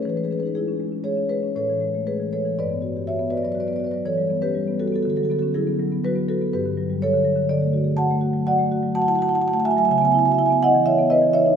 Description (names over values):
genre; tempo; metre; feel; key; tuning
classical, contemporary piece for solo marimba; 122 BPM; 5/4; rubato; unclear; A4 = 441 Hz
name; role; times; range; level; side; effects
marimba with soft mallets; solo; 0.0-11.6 s; G2 to A5; -19 LUFS; equal; none
room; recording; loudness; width
wet scoring stage reverb, RT60 1.9 s; recorded in a church or concert hall; -19 LUFS; side -7 dB against mid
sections
0.0-11.6 A section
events
none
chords
0.0 E6; 1.6 Amaj7; 2.6 Gmaj7; 4.0 Em; 5.0 D69; 6.5 Gmaj9; 7.5 D; 9.9 C#m9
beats
| 0.05 0.55 1.04 1.55 2.06 | 2.56 3.06 3.55 4.04 4.54 | 5.02 5.52 6.01 6.50 6.99 | 7.47 7.96 8.44 8.93 9.40 | 9.88 10.36 10.84 11.34